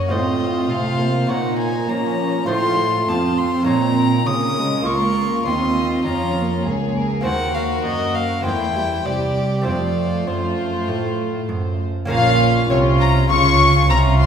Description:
classical, baroque-style concerto movement with solo episodes; 100 BPM; 4/4; straight; Bb minor; A4 = 440 Hz
rich chamber violin section; melody; 0.0-14.3 s; Bb4 to Db6; -26 LUFS; left 7 dB
warm violin; melody; 0.0-14.3 s; C5 to Eb6; -23 LUFS; left 2 dB
rich chamber violin section; second line; 0.0-14.3 s; Db4 to Ab4; -25 LUFS; equal
dark chamber viola section; accompaniment; 0.0-14.3 s; F3 to Db4; -24 LUFS; right 2 dB
lute; accompaniment; 0.0-14.3 s; Eb2 to Db5; -28 LUFS; right 1 dB
warm chamber cello section; bass; 0.0-14.3 s; C2 to Bb3; -22 LUFS; right 2 dB
rich chamber double bass section; bass; 12.1-14.3 s; Bb1 to Db2; -19 LUFS; right 1 dB
wet recital hall reverb, RT60 1.8 s; heard from further back in the room; -16 LUFS; side -7 dB against mid
0.0-12.1 A section; 12.1-14.3 B section
0.1 F7/A; 1.3 Bbm; 2.5 F/A; 3.7 Bbm; 4.9 Bbm/Db; 7.3 Cm7b5/Eb; 8.5 C7/E; 9.7 F; 12.1 Bbm

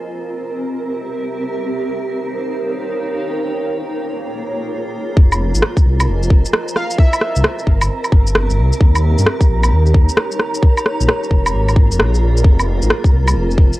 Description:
future garage; 132 BPM; 4/4; swing 64% on 16ths; F minor; A4 = 440 Hz
granular cloud pad; sustained chords; 0.0-13.8 s; Bb3 to Ab5; -24 LUFS; equal; built-in reverb, sidechain pumping, cassette tape
wind-like tuned noise texture; texture; 0.0-13.8 s; Bb4; -25 LUFS; right 4 dB; built-in reverb, cassette tape
swelling detuned saw bass; bass; 5.2-13.7 s; F1 to G2; -15 LUFS; equal; sidechain pumping
electronic kick drum; drums; 5.2-13.7 s; -10 LUFS; equal; cassette tape
electronic shaker, woodblock and rim click; drums; 5.3-13.8 s; -17 LUFS; equal; low-pass filter on perc, cassette tape, low-pass filter on snare
plucky unison lead; melody; 6.8-7.6 s; E5 to F5; -24 LUFS; equal; tape echo
light reverb; home recording on cassette; -13 LUFS; side -18 dB against mid
0.0-5.2 A section; 5.2-13.8 B section
0.0 C7; 1.5 Eb13; 3.4 Bbm7; 5.2 Fm7; 7.0 C7; 8.8 Eb7; 10.6 Bbm7; 12.4 Fm7

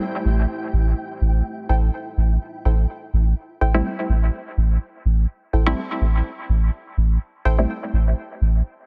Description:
dub techno; 125 BPM; 4/4; swing 55% on 16ths; A minor; A4 = 438 Hz
dark analog pad; sustained chords; 0.1-2.9 s; A3 to C5; -35 LUFS; equal; chorus
filtered dub chord stab; stabs; 0.0, 3.7-7.7 s; G3 to E4; -29 LUFS; equal; chorus, phaser, dub echo
flickering grainy texture; texture; 0.0-2.9 s; E4 to G5; -40 LUFS; equal; built-in reverb
warm sub bass; bass; 0.3-8.6 s; A1; -20 LUFS; equal
filtered dub chord stab; riff; 1.7-7.7 s; E4 to G5; -33 LUFS; equal; chorus, dub echo
little or no reverb; dense, heavily limited modern master; -21 LUFS; mono
0.0-2.9 A section; 2.9-8.9 A section
0.0 Am7

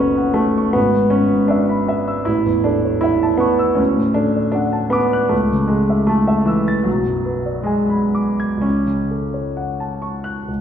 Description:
classical, romantic character piece for solo piano; 59-80 BPM; 4/4; rubato; F# minor; A4 = 439 Hz
warm grand piano; solo; 0.0-10.6 s; F#1 to A6; -15 LUFS; equal
wet recital hall reverb, RT60 1.4 s; heard from further back in the room; -15 LUFS; side -8 dB against mid
0.0-10.6 A section
0.0 F#m; 0.8 E/G#; 2.3 A; 3.8 D; 5.3 A/C#; 6.9 G#m7b5/B; 8.6 F#m/C#

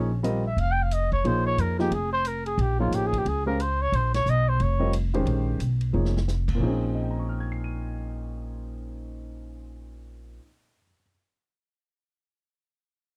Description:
modal jazz; 179 BPM; 4/4; swing 62% on 8ths; Bb dorian; A4 = 440 Hz
breathy trumpet; melody; 0.0-4.9 s; Db4 to G5; -29 LUFS; equal
warm grand piano; accompaniment; 0.0-11.1 s; Bb2 to Eb7; -32 LUFS; equal
upright bass; bass; 0.0-10.4 s; F1 to F2; -29 LUFS; equal
swinging big-band drum kit; drums; 0.2-6.5 s; crash cymbal, hi-hat, kick drum, ride cymbal, snare drum; -37 LUFS; equal
little or no reverb; dry, close 1970s-style studio recording; -26 LUFS; mono
0.0-6.6 A section; 6.6-9.3 B section
trumpet solo 0.0-6.6; drum fill 5.9-6.3
0.0 Bbm11

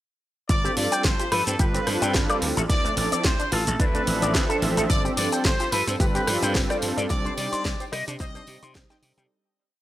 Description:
nu-disco, nu disco; 109 BPM; 4/4; swing 55% on 16ths; G mixolydian; A4 = 440 Hz
bright trumpet section; melody; 0.5-8.7 s; A4 to Eb5; -29 LUFS; equal; tape echo
warm analog pad; accompaniment; 0.7-9.3 s; F3 to E5; -29 LUFS; right 1 dB; chorus, sidechain pumping
analog pluck; arpeggios; 0.5-9.2 s; E3 to C5; -33 LUFS; right 2 dB; chorus, sidechain pumping, tape echo
slap bass; bass; 0.5-9.3 s; G1 to C3; -29 LUFS; equal; sidechain pumping
electronic kick drum; drums; 0.5-8.9 s; -25 LUFS; equal
house drum kit; drums; 0.5-9.3 s; hi-hat, rim click, shaker, snare drum; -28 LUFS; equal
electric guitar with an envelope filter; riff; 0.6-9.2 s; D4 to C6; -29 LUFS; left 2 dB; analog chorus
tambourine; percussion; 4.9-9.3 s; -38 LUFS; left 1 dB
little or no reverb; dry, gritty hardware recording; -21 LUFS; side -14 dB against mid
0.5-9.3 drop
drop 0.5-9.3; fade-out 6.4-9.3
0.5 G7sus4; 2.4 Dm9; 4.9 G7sus4; 7.1 Cmadd9

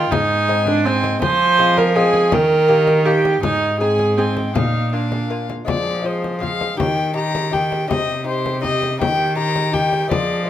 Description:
classical, renaissance-style consort dance; 162 BPM; 3/4; straight; A4 = 440 Hz
warm violin; melody; 0.0-10.5 s; C5 to Bb5; -24 LUFS; left 4 dB
rich viola; second line; 0.0-10.5 s; C4 to C5; -19 LUFS; right 3 dB
lute; accompaniment; 0.0-10.5 s; Ab2 to Ab4; -24 LUFS; left 4 dB
rich cello; bass; 0.0-10.5 s; Ab2 to F3; -22 LUFS; right 1 dB
frame drum; percussion; 0.1-10.3 s; -25 LUFS; left 4 dB
moderate stone room reverb, RT60 1.1 s; -15 LUFS; side -11 dB against mid
0.0-5.7 A section; 5.7-10.5 B section
0.1 Ab; 1.2 Fm; 2.3 Eb; 3.4 Ab; 4.6 Bb; 5.7 Fm; 6.8 Eb; 7.9 Cm; 9.0 Eb

